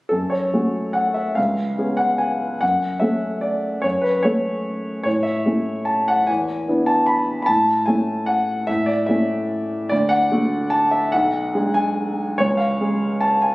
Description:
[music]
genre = classical, piano waltz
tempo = 147 BPM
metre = 3/4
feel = uneven beats, rubato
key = F# minor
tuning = A4 = 438 Hz
[part]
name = warm grand piano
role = solo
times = 0.1-13.5 s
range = B1 to B5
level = -18 LUFS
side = equal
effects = none
[sound]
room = wet recital hall reverb, RT60 1.5 s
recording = recorded on a phone in the room, studio reverb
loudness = -18 LUFS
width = side -20 dB against mid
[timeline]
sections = 0.1-13.5 A section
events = none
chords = 0.1 F#m; 1.4 C#7; 2.6 F#m; 5.1 A; 6.3 E7; 7.5 A; 9.9 D; 11.1 G#m7b5/B; 12.4 C#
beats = | 0.11 0.53 0.96 | 1.37 1.78 2.20 | 2.62 3.02 3.44 | 3.84 4.25 4.65 | 5.06 5.46 5.88 | 6.29 6.68 7.09 | 7.49 7.87 8.29 | 8.69 9.09 9.51 | 9.91 10.31 10.72 | 11.13 11.54 11.96 | 12.38 12.80 13.23

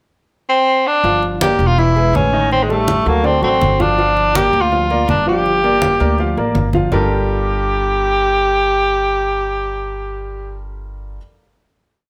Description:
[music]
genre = Afro-Cuban jazz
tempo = 163 BPM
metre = 4/4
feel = straight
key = G minor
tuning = A4 = 442 Hz
[part]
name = warm tenor saxophone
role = melody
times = 0.5-10.6 s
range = Ab3 to G4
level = -18 LUFS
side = equal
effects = none
[part]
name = warm grand piano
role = accompaniment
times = 1.0-11.2 s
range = D3 to F5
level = -23 LUFS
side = equal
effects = none
[part]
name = upright bass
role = bass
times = 1.0-11.2 s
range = E1 to D2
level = -23 LUFS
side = equal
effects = none
[part]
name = congas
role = percussion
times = 1.0-7.0 s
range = none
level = -25 LUFS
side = equal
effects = none
[sound]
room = wet large studio reverb, RT60 1.4 s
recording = none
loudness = -15 LUFS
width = mono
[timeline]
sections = 0.0-1.0 pickup bar; 1.0-6.9 A section; 6.9-9.9 final chord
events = none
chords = 0.0 N.C.; 1.0 Gm7; 1.8 E; 2.5 A7(b5, no3); 3.2 D7; 4.0 Gm7; 6.9 Gm9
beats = 0.30 0.67 | 1.03 1.40 1.77 2.14 | 2.51 2.87 3.24 3.61 | 3.98 4.34 4.71 5.08 | 5.45 5.82 6.18 6.55 | 6.92 7.29 7.66 8.03 | 8.40 8.77 9.13 9.50

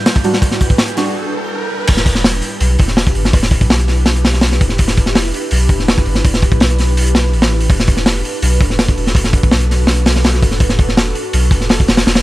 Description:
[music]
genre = drum and bass, jungle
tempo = 165 BPM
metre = 4/4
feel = straight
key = E minor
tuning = A4 = 441 Hz
[part]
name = ethereal airy pad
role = sustained chords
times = 0.0-12.2 s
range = G3 to B4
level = -23 LUFS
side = right 1 dB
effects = ensemble chorus, built-in reverb
[part]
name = soft dub sub bass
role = bass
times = 0.0-12.2 s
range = E1 to B1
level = -16 LUFS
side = equal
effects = high-pass filter
[part]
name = riser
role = sound effects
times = 0.0-1.9 s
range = none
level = -25 LUFS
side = right 1 dB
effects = none
[part]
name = backwards swelling texture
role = texture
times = 0.0-1.2 s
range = G6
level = -31 LUFS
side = right 2 dB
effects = built-in reverb
[part]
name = breakbeat sampler-style drum kit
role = drums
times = 0.1-1.1 s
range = hi-hat, snare drum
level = -29 LUFS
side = equal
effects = none
[part]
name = crunchy breakbeat drum kit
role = drums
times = 0.1-12.2 s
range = crash cymbal, hi-hat, kick drum, snare drum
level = -12 LUFS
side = equal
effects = none
[part]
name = deep mellow chord stab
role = stabs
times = 0.2-1.2 s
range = G3 to F#4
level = -20 LUFS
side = right 2 dB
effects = chorus, phaser, cassette tape, dub echo
[sound]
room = small room ambience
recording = vinyl crackle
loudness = -11 LUFS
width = side -17 dB against mid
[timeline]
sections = 0.0-1.9 A section; 1.9-12.2 B section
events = build-up 0.0-1.9; riser 0.0-1.9; filter sweep on ambient pad 0.0-1.9; break 1.2-1.9; drop 1.9-12.2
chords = 0.0 Em7; 7.7 D6/E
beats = 0.06 | 0.42 0.79 1.15 1.52 | 1.88 2.24 2.61 2.97 | 3.33 3.70 4.06 4.42 | 4.79 5.15 5.52 5.88 | 6.24 6.61 6.97 7.33 | 7.70 8.06 8.43 8.79 | 9.15 9.52 9.88 10.24 | 10.61 10.97 11.33 11.70 | 12.06

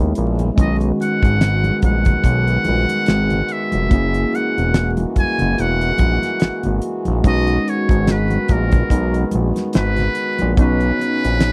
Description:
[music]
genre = R&B, neo-soul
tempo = 72 BPM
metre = 4/4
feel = swing 55% on 16ths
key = B major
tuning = A4 = 438 Hz
[part]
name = tine electric piano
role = accompaniment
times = 0.0-11.5 s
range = D#3 to G#4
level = -25 LUFS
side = equal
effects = overdrive
[part]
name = mellow French horn section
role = sustained chords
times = 0.0-11.5 s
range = C#3 to F#4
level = -28 LUFS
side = equal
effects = none
[part]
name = fat analog bass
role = bass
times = 0.0-11.5 s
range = E1 to D#2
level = -21 LUFS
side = equal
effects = none
[part]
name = damped 70s drum kit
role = drums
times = 0.2-11.5 s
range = hi-hat, kick drum, snare drum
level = -19 LUFS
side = equal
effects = none
[part]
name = congas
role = percussion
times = 0.4-11.2 s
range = none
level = -31 LUFS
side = equal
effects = none
[part]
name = trumpet with metal mute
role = melody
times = 0.6-11.5 s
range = A#4 to G#5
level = -24 LUFS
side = equal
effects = slapback echo
[sound]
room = little or no reverb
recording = dry, close 1970s-style studio recording, vinyl crackle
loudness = -17 LUFS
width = mono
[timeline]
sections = 0.0-11.5 A section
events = none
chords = 0.0 E6; 0.6 B6; 3.9 F#9; 7.2 B6; 10.6 Bmaj9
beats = | 0.58 1.41 2.24 3.08 | 3.91 4.74 5.58 6.41 | 7.24 8.08 8.91 9.74 | 10.58 11.41

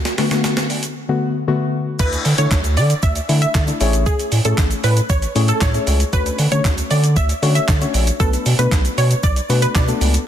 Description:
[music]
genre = dance-pop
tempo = 116 BPM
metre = 4/4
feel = straight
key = unclear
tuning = A4 = 442 Hz
[part]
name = crisp 8-bit digital drum machine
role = drums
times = 0.1-10.3 s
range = crash cymbal, handclaps, hi-hat, kick drum, shaker, snare drum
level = -19 LUFS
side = right 1 dB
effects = none
[part]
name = egg shaker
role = percussion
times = 0.1-10.3 s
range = none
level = -34 LUFS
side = right 19 dB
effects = none
[part]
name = deep mellow chord stab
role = accompaniment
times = 0.2-10.1 s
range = D3 to C#5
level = -22 LUFS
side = left 5 dB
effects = chorus, sidechain pumping
[part]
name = wide unison pluck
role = melody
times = 2.0-10.1 s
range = G#4 to E5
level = -23 LUFS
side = right 1 dB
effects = sidechain pumping, ping-pong delay
[part]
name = saturated sub bass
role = bass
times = 2.0-10.2 s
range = A1 to D3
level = -17 LUFS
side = right 1 dB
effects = sidechain pumping
[sound]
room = light reverb, digital ambience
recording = dense, heavily limited modern master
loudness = -15 LUFS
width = side -10 dB against mid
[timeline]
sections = 0.0-2.0 A section; 2.0-10.3 B section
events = build-up 0.0-2.0; drum fill 0.0-1.0; drop 2.0-10.3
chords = 0.0 Bm7; 2.0 Dsus2; 3.8 Amaj7; 6.1 Dmaj7; 8.2 Bm7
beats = 0.44 0.96 1.48 | 1.99 2.51 3.03 3.54 | 4.06 4.58 5.10 5.61 | 6.13 6.65 7.17 7.68 | 8.20 8.72 9.23 9.75

